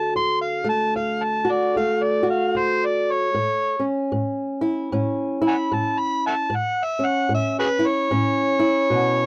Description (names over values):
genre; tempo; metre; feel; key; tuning
acoustic country blues, solo or duo; 75 BPM; 4/4; swing 60% on 8ths; unclear; A4 = 436 Hz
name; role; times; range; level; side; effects
overdriven harmonica; melody; 0.0-9.3 s; F#4 to C6; -24 LUFS; equal; none
fingerpicked old ladder-braced acoustic guitar; accompaniment; 0.0-9.3 s; D2 to F#4; -25 LUFS; equal; none
room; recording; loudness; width
light reverb; dry, close 1970s-style studio recording; -22 LUFS; mono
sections
0.0-9.3 A section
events
harmonica solo 0.0-9.3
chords
0.0 D; 3.3 A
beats
| 0.14 0.94 1.73 2.53 | 3.33 4.12 4.92 5.72 | 6.51 7.31 8.11 8.91